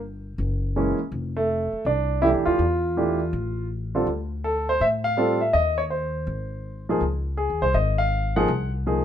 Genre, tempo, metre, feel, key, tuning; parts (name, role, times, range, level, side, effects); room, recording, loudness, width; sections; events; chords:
jazz piano trio; 163 BPM; 4/4; swing 65% on 8ths; A4 = 440 Hz
upright bass; bass; 0.0-9.0 s; F1 to A2; -27 LUFS; left 1 dB
warm grand piano; melody; 0.8-9.0 s; D3 to Gb5; -22 LUFS; right 1 dB
light reverb; minimal, uncompressed stereo recording; -21 LUFS; side -10 dB against mid
0.0-4.1 A section; 4.1-9.0 B section
0.4 Gb9; 1.1 Fmaj7; 2.6 Fmaj13/E; 3.3 F/A; 4.1 Dm7; 5.5 Cm/Eb; 6.3 Ab; 7.0 Dbadd9; 8.5 Cm7b5